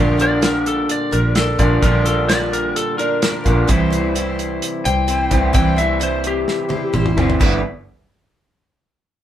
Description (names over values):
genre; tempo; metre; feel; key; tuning
folk rock and heartland rock; 129 BPM; 4/4; straight; unclear; A4 = 441 Hz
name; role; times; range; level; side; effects
picked twelve-string acoustic guitar; accompaniment; 0.0-7.6 s; Bb2 to C5; -22 LUFS; equal; none
electric guitar through a small old amp; riff; 0.0-7.6 s; G2 to F4; -22 LUFS; right 1 dB; none
fingered electric bass; bass; 0.0-7.6 s; G1 to C2; -20 LUFS; right 1 dB; none
lightly driven lead guitar; melody; 0.2-7.2 s; G4 to G5; -21 LUFS; left 3 dB; none
damped 70s drum kit; drums; 0.2-7.5 s; crash cymbal, hi-hat, kick drum, snare drum, toms; -19 LUFS; equal; none
room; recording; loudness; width
moderate small room reverb, RT60 0.6 s; band playing live in one room; -15 LUFS; side -11 dB against mid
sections
0.0-7.4 A section; 7.4-9.2 B section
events
lead electric guitar solo 0.0-7.4; drum fill 6.5-7.4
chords
0.0 Bb6; 3.7 C; 7.4 G6